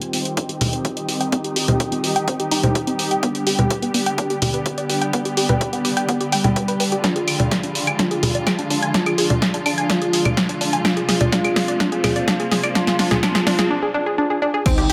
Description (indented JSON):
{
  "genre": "melodic techno",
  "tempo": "126 BPM",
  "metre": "4/4",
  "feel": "straight",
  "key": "unclear",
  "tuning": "A4 = 440 Hz",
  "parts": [
    { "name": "expressive synth lead", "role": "melody", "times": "0.0-14.9 s", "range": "G3 to F4", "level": "-28 LUFS", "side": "equal", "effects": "ensemble chorus, sidechain pumping, dub echo" },
    { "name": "muted studio string section", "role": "sustained chords", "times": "0.0-14.9 s", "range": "C3 to G4", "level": "-29 LUFS", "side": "equal", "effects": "sidechain pumping, low-pass filter" },
    { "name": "unison pluck", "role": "arpeggios", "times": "0.0-14.9 s", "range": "B3 to Ab5", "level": "-26 LUFS", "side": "equal", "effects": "sidechain pumping, delay" },
    { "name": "deep house drum kit", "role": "drums", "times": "0.0-14.9 s", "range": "claves, congas, crash cymbal, hi-hat, snare drum", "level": "-23 LUFS", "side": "equal", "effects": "overdrive, sidechain pumping on hats, sidechain pumping on perc, sidechain pumping on cymbals" },
    { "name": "ethereal airy pad", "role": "texture", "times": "0.0-14.9 s", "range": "C4 to Eb6", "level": "-32 LUFS", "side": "equal", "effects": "ensemble chorus, built-in reverb, sidechain pumping" },
    { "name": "electronic kick drum", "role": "drums", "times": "0.4-14.8 s", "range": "none", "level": "-27 LUFS", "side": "equal", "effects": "high-pass filter on kick" },
    { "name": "riser and sub drop", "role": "sound effects", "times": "9.6-14.9 s", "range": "none", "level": "-34 LUFS", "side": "equal", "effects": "none" },
    { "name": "hi-hat", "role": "drums", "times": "14.7-14.9 s", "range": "none", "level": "barely audible", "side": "none", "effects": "none" },
    { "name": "gritty driven synth bass", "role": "bass", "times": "14.8-14.9 s", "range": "C2", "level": "-28 LUFS", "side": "equal", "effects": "sidechain pumping" }
  ],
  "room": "moderate lush hall reverb, RT60 1.5 s, digital ambience",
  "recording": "none",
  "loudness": "-20 LUFS",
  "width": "mono",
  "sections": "0.0-14.7 A section",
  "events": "build-up 0.0-14.7; filter sweep on synth pluck 0.0-14.7; filter sweep on analog synth lead 0.0-14.7; filter sweep on string section 0.0-14.7; drum fill 7.0-13.7; impact 14.7",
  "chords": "0.0 Cm; 3.2 G; 7.0 Ddim; 10.8 Fm",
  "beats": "0.37 0.85 | 1.32 1.80 2.28 2.75 | 3.23 3.71 4.18 4.66 | 5.13 5.61 6.09 6.56 | 7.04 7.51 7.99 8.47 | 8.94 9.42 9.90 10.37 | 10.85 11.32 11.80 12.28 | 12.75 13.23 13.71 14.18 | 14.66"
}